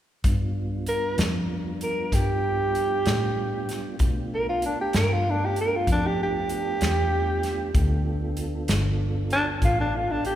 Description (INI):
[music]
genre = slow blues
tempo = 64 BPM (dotted quarters)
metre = 12/8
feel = straight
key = G mixolydian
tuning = A4 = 442 Hz
[part]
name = mellow tonewheel organ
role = sustained chords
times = 0.2-10.4 s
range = G3 to A4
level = -34 LUFS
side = right 2 dB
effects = fast rotary speaker
[part]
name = vintage muted fingered electric bass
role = bass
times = 0.2-10.4 s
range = G1 to B2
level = -27 LUFS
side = equal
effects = none
[part]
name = natural country drum kit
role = drums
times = 0.2-10.4 s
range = hi-hat, kick drum, snare drum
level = -28 LUFS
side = equal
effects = none
[part]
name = growling tenor saxophone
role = melody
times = 0.9-10.4 s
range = D4 to Bb4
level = -25 LUFS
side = right 1 dB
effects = none
[sound]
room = wet church reverb, RT60 3.1 s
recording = recorded in a church or concert hall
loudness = -22 LUFS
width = side -11 dB against mid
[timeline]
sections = 0.2-10.4 A section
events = none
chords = 0.2 G7